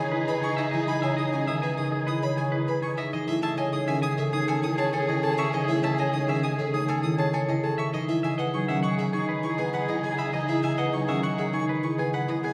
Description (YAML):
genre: classical, minimalist pattern music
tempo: 100 BPM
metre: 4/4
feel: straight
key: E major, A lydian from 3.1 s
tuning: A4 = 441 Hz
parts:
  - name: clean electric guitar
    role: melody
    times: 0.0-12.5 s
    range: G#4 to G#5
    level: -37 LUFS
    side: equal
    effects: none
  - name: clear oboe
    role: second line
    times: 0.0-12.5 s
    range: G#4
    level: -38 LUFS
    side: equal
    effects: none
  - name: concert harp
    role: accompaniment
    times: 0.0-12.5 s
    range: C#3 to C#4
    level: -31 LUFS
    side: equal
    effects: none
  - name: warm symphonic string section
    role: sustained chords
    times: 0.0-12.5 s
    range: C#4 to G#4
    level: -36 LUFS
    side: equal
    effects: none
  - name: marimba with soft mallets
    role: arpeggios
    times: 0.0-12.5 s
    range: C#4 to C#5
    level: -32 LUFS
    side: equal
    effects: none
  - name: warm violin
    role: arpeggios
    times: 0.0-12.5 s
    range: D#5 to D#6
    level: -36 LUFS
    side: equal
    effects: none
room: wet scoring stage reverb, RT60 1.6 s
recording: heard from further back in the room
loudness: -26 LUFS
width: mono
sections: 0.0-3.1 A section; 3.1-12.5 B section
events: none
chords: 0.0 Emaj7; 3.1 Amaj7; 7.9 Emaj9